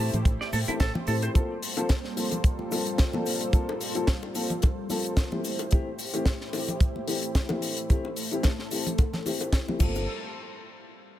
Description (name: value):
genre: nu-disco, nu disco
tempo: 110 BPM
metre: 4/4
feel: swing 55% on 16ths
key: unclear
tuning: A4 = 443 Hz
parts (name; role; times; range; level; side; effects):
- dark baby grand piano; accompaniment; 0.0-10.0 s; E3 to A4; -32 LUFS; left 2 dB; sidechain pumping, dub echo
- lush unison pad; sustained chords; 0.0-10.1 s; G3 to C5; -36 LUFS; right 1 dB; chorus, phaser, sidechain pumping
- clean electric guitar; riff; 0.0-1.3 s; E4 to D5; -35 LUFS; right 4 dB; lush chorus, vintage 12-bit sampler grit, dub echo
- deep dub fingered electric bass; bass; 0.0-1.3, 9.8-10.1 s; G1 to A2; -29 LUFS; equal; sidechain pumping
- tight funk drum kit; drums; 0.1-9.9 s; crash cymbal, hi-hat, snare drum; -33 LUFS; left 2 dB; none
- cabasa, congas and bongos; percussion; 0.1-10.1 s; none; -35 LUFS; left 1 dB; none
- kick drum; drums; 0.3-9.9 s; none; -23 LUFS; equal; none
room: small room ambience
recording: none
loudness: -25 LUFS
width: side -13 dB against mid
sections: 0.0-10.1 A section; 10.1-11.2 B section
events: filter sweep on analog synth pad 0.0-10.1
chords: 0.0 Am7; 1.4 Gm11; 5.4 Am7; 9.8 Gm11; 10.1 N.C.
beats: 0.26 0.81 | 1.35 1.90 2.44 2.99 | 3.53 4.08 4.62 5.17 | 5.71 6.26 6.81 7.35 | 7.90 8.44 8.99 9.53